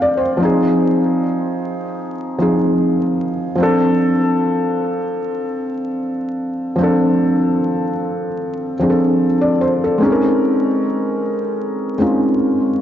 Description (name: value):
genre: hip hop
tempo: 75 BPM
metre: 4/4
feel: swing 56% on 16ths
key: unclear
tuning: A4 = 443 Hz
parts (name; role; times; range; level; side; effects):
- felt-muted upright piano; solo; 0.0-12.8 s; F3 to G5; -15 LUFS; equal; ping-pong delay
room: wet plate reverb, RT60 2.6 s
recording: dreamy mix soaked in reverb, vinyl crackle, nothing above 7.6 kHz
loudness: -15 LUFS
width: side -10 dB against mid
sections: 0.0-10.0 A section; 10.0-12.8 B section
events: none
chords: 0.4 Fm7; 3.6 Dm7; 10.0 Bbm11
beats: | 0.39 1.19 1.99 2.79 | 3.59 4.39 5.19 5.99 | 6.79 7.59 8.39 9.19 | 9.99 10.79 11.59 12.39